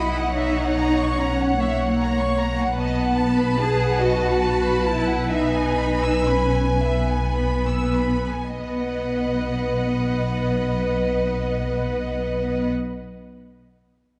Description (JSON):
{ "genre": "classical, slow romantic movement for string orchestra", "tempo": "31-51 BPM (dotted quarters)", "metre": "6/8", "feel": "rubato", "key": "B major", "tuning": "A4 = 440 Hz", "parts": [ { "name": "rich studio violin section", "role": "melody", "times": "0.0-12.7 s", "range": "F#5 to A5", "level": "-36 LUFS", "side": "equal", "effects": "none" }, { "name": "clear studio violin section", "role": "second line", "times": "0.0-12.7 s", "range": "D#5 to E6", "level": "-31 LUFS", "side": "equal", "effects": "none" }, { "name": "rich studio viola section", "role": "accompaniment", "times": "0.0-12.7 s", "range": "B4 to D#5", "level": "-28 LUFS", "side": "equal", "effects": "none" }, { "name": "dark studio double bass section", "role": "bass", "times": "0.0-12.7 s", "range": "B1", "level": "-28 LUFS", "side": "equal", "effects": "none" }, { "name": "rich studio cello section", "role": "bass", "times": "0.0-12.7 s", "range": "A#3 to G#4", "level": "-27 LUFS", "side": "equal", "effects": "none" } ], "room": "wet concert hall reverb, RT60 2.1 s", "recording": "dark, warm production, nothing above 10.7 kHz", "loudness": "-22 LUFS", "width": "mono", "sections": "0.0-8.6 A section; 8.6-11.9 B section", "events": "slowing down 1.6-8.6", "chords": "0.4 F#/B; 2.8 B7(no3); 5.3 E/B; 8.6 B" }